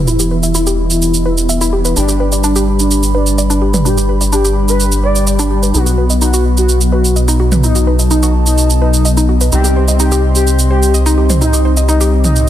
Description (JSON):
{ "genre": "melodic techno", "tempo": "127 BPM", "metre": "4/4", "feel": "straight", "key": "unclear", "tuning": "A4 = 440 Hz", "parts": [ { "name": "dark analog pad", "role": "sustained chords", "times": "0.0-12.5 s", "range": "F#4 to C6", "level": "-25 LUFS", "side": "right 2 dB", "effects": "chorus" }, { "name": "woody wave-folded pluck", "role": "arpeggios", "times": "0.0-12.1 s", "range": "D4 to E5", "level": "-20 LUFS", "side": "equal", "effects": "chorus, vintage 12-bit sampler grit, tape echo" }, { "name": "analog synth brass", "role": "stabs", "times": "0.0-12.5 s", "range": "B2 to G4", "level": "-18 LUFS", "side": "left 3 dB", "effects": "chorus, tape echo" }, { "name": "round analog bass", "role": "bass", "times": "0.0-12.5 s", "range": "E1 to C2", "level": "-13 LUFS", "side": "equal", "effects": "none" }, { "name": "expressive portamento lead", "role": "melody", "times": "0.1-12.5 s", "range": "D4 to D5", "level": "-18 LUFS", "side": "left 1 dB", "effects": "analog chorus, tape echo" }, { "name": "electronic shaker and toms", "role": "drums", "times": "0.1-12.5 s", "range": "none", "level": "-18 LUFS", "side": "right 2 dB", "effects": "overdrive, small room ambience, soft clipping on snare" } ], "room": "light reverb", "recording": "dense, heavily limited modern master", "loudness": "-10 LUFS", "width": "side -11 dB against mid", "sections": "0.0-12.5 A section", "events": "filter sweep on synth pluck 0.0-12.5; filter sweep on analog synth lead 0.0-12.5; filter sweep on analog polysynth 0.0-12.5; filter sweep on analog synth pad 0.0-12.5", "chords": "0.0 Em; 2.0 G; 5.7 B; 9.5 Cm" }